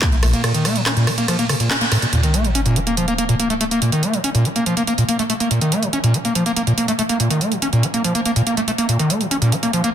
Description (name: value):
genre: driving peak-time techno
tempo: 142 BPM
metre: 4/4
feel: straight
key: Bb harmonic minor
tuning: A4 = 439 Hz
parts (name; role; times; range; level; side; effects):
- overdriven acid bass; riff; 0.0-9.9 s; A2 to Db4; -17 LUFS; equal; distortion, lush chorus, sidechain pumping, ping-pong delay
- analog drone; drone; 0.0-2.2 s; Bb2; -28 LUFS; equal; chorus, sidechain pumping
- techno drum kit; drums; 0.0-9.9 s; handclaps, hi-hat, ride cymbal, rim click; -22 LUFS; right 3 dB; sidechain pumping on hats, sidechain pumping on cymbals
- sub drop; sound effects; 2.1-3.8 s; none; -22 LUFS; equal; none
room: moderate lush hall reverb, RT60 2.0 s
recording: dense, heavily limited modern master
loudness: -16 LUFS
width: side -9 dB against mid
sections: 0.0-2.1 A section; 2.1-9.9 B section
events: drop 0.0-2.1; band accent 1.7; impact 2.1-3.8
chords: none